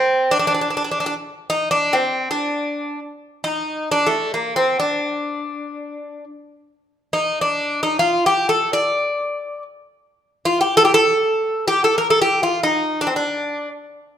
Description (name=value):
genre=Turkish makam ensemble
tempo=free time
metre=none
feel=none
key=D makam kurdi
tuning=A4 = 439 Hz
part: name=Greek bouzouki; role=solo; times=0.0-13.7 s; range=A3 to D5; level=-17 LUFS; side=equal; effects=none
room=moderate recital hall reverb, RT60 1.5 s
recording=minimal, uncompressed stereo recording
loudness=-17 LUFS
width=side -9 dB against mid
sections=0.0-14.2 A section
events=none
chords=none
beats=free time